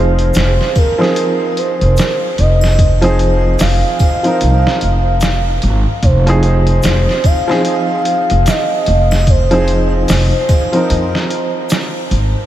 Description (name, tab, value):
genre	trip hop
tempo	74 BPM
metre	4/4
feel	swing 59% on 16ths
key	F minor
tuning	A4 = 440 Hz
part	pure breathy sine lead	melody	0.0-11.7 s	Bb4 to F5	-18 LUFS	right 1 dB	chorus, tape echo
part	warm upright piano	accompaniment	0.0-12.5 s	F3 to Bb4	-18 LUFS	right 1 dB	harmonic tremolo, tape echo
part	concert harp	arpeggios	0.0-1.1 s	Eb4 to F5	-31 LUFS	left 1 dB	none
part	upright bass	bass	0.0-12.3 s	F1 to F2	-13 LUFS	equal	none
part	trip hop sampler-style drum kit	drums	0.2-12.3 s	hi-hat, kick drum, snare drum	-18 LUFS	equal	vintage 12-bit sampler grit
part	egg shaker and triangle	percussion	0.3-11.9 s	none	-34 LUFS	right 2 dB	none
room	moderate huge ambient reverb, RT60 7.7 s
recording	dreamy mix soaked in reverb, vinyl crackle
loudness	-11 LUFS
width	side -12 dB against mid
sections	0.0-12.5 A section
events	none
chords	0.0 Fm7